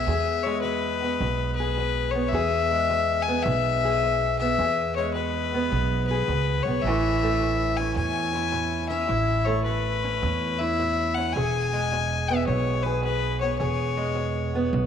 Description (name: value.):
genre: acoustic country blues, solo or duo.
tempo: 106 BPM.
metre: 4/4.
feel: swing 67% on 8ths.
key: E major.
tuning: A4 = 440 Hz.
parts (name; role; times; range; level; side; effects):
clear fiddle; melody; 0.0-14.7 s; B4 to G#5; -26 LUFS; left 6 dB; none.
fingerpicked steel-string acoustic guitar; accompaniment; 0.0-14.9 s; E2 to G#4; -28 LUFS; right 1 dB; none.
upright bass; bass; 0.0-14.9 s; E1 to E2; -28 LUFS; right 2 dB; none.
room: moderate plate reverb, RT60 3.8 s.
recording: none.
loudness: -22 LUFS.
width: side -8 dB against mid.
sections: 0.0-14.9 A section.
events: none.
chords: 0.0 E; 6.9 A; 11.4 E.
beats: | 0.08 0.64 1.21 1.77 | 2.34 2.90 3.47 4.03 | 4.60 5.16 5.72 6.29 | 6.85 7.42 7.98 8.54 | 9.11 9.67 10.23 10.80 | 11.36 11.92 12.49 13.05 | 13.61 14.18 14.74.